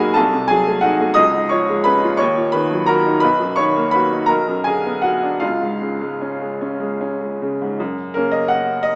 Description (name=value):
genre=classical, romantic character piece for solo piano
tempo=50-60 BPM (dotted quarters)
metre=6/8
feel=rubato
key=F# major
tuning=A4 = 440 Hz
part: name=clear upright piano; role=solo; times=0.0-9.0 s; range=B1 to D#6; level=-18 LUFS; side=equal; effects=none
room=moderate recital hall reverb, RT60 1.6 s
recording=small speaker sound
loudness=-18 LUFS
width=mono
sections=0.0-7.8 A section; 7.8-9.0 B section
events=none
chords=0.2 Cdim7; 1.2 C#; 2.2 D#m; 3.2 Bmaj7; 4.3 Bm; 5.4 C#; 7.8 F#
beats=0.17 | 1.17 2.20 | 3.23 4.29 | 5.43 6.61 | 7.79 8.86